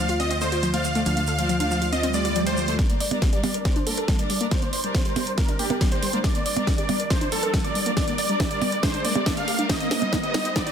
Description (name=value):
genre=uplifting trance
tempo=139 BPM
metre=4/4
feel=straight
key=G minor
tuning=A4 = 443 Hz
part: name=supersaw chords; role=melody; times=0.0-10.7 s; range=G4 to F5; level=-27 LUFS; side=equal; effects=sidechain pumping, low-pass filter, ping-pong delay
part: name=clear studio string section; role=sustained chords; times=0.0-10.7 s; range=G3 to Eb5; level=-32 LUFS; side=right 1 dB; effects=sidechain pumping
part: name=wide unison pluck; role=arpeggios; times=0.0-10.7 s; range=F3 to Eb5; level=-29 LUFS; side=left 3 dB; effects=sidechain pumping, ping-pong delay
part: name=plucky analog bass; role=bass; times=0.0-2.8 s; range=D2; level=-28 LUFS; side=equal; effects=sidechain pumping
part: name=techno drum kit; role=drums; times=0.1-10.7 s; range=hi-hat, percussion blips, snare drum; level=-28 LUFS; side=right 3 dB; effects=sidechain pumping on hats, sidechain pumping on perc
part: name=tube shaker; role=percussion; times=0.1-2.8 s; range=none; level=-36 LUFS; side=right 4 dB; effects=none
part: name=swell and riser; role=sound effects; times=2.0-10.7 s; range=none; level=-32 LUFS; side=right 2 dB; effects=none
part: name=electronic kick drum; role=drums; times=2.8-10.6 s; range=none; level=-24 LUFS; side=equal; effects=none
room=moderate concert hall reverb, RT60 1.8 s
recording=dense, heavily limited modern master, high-pass filter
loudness=-21 LUFS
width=side -8 dB against mid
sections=0.0-2.8 A section; 2.8-10.7 B section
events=swell 2.0-2.8; build-up 2.8-10.7; drum fill 2.8-10.7; filter sweep on supersaw synth 2.8-10.7; filter sweep 2.8-10.7; riser 4.4-10.7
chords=0.0 Dm7; 2.8 Gm; 9.7 Cm